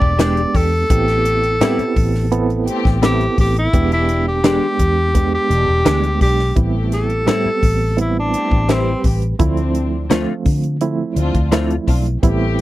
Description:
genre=straight-eighth soul blues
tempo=85 BPM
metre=4/4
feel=straight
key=A minor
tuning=A4 = 440 Hz
part: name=breathy tenor saxophone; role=melody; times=0.0-9.1 s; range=C4 to D5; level=-19 LUFS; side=equal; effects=none
part: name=reed electric piano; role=accompaniment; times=0.0-12.6 s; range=F3 to G5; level=-21 LUFS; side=right 5 dB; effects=fast tremolo
part: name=dark studio string section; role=sustained chords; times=0.0-12.6 s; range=G#3 to G4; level=-28 LUFS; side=left 3 dB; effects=none
part: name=vintage muted fingered electric bass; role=bass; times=0.0-12.6 s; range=E1 to D3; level=-19 LUFS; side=equal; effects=none
part: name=tight funk drum kit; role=drums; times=0.0-12.6 s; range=hi-hat, kick drum, snare drum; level=-17 LUFS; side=equal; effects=none
part: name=direct-recorded clean electric guitar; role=stabs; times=0.2-11.7 s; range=A2 to G4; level=-20 LUFS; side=left 6 dB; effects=ensemble chorus
room=little or no reverb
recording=dry, close 1970s-style studio recording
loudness=-14 LUFS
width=side -16 dB against mid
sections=0.0-6.6 A section; 6.6-12.6 B section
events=tenor saxophone solo 0.0-6.6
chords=0.0 E7#9; 0.9 Am7; 3.7 E7#9; 6.6 Am7; 9.4 Dm7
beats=0.19 | 0.90 1.61 2.32 3.02 | 3.73 4.44 5.15 5.86 | 6.57 7.28 7.98 8.69 | 9.40 10.11 10.82 11.52 | 12.23

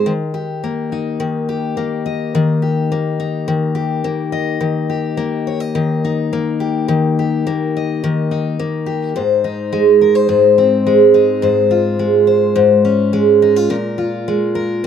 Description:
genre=pop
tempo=106 BPM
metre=4/4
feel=straight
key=unclear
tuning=A4 = 440 Hz
part: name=picked steel-string acoustic guitar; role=solo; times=0.0-14.9 s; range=Ab2 to Eb5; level=-14 LUFS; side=left 1 dB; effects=none
room=light reverb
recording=recorded outdoors, with no room sound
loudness=-13 LUFS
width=side -8 dB against mid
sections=0.0-4.6 A section; 4.6-9.2 B section; 9.2-14.9 C section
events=none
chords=0.1 Eb; 9.2 Ab; 11.4 Dbmaj7/Ab; 13.7 Bb7(no3)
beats=| 0.05 0.62 1.20 1.77 | 2.34 2.91 3.48 4.05 | 4.62 5.18 5.75 6.32 | 6.89 7.46 8.02 8.59 | 9.15 9.72 10.29 10.85 | 11.42 11.99 12.55 13.12 | 13.69 14.26 14.82

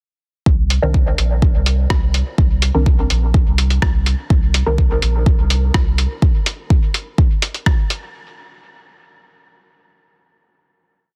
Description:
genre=dub techno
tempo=125 BPM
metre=4/4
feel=straight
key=C minor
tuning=A4 = 439 Hz
part: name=soft dub sub bass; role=bass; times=0.5-6.1 s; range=Bb1 to C2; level=-19 LUFS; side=equal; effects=sidechain pumping
part: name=electronic kick drum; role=drums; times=0.5-7.8 s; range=none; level=-17 LUFS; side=equal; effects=none
part: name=lo-fi sampler-style drum kit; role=drums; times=0.7-8.0 s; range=hi-hat, rim click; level=-24 LUFS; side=equal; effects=soft clipping on snare
part: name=filtered dub chord stab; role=stabs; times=0.8-6.5 s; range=Eb3 to Bb4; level=-27 LUFS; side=equal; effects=phaser, cassette tape, dub echo
room=little or no reverb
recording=dense, heavily limited modern master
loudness=-16 LUFS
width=mono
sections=0.5-8.1 groove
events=none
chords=0.5 Cm9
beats=| 0.46 0.94 1.42 1.90 | 2.38 2.86 3.34 3.82 | 4.30 4.78 5.26 5.74 | 6.22 6.70 7.18 7.66

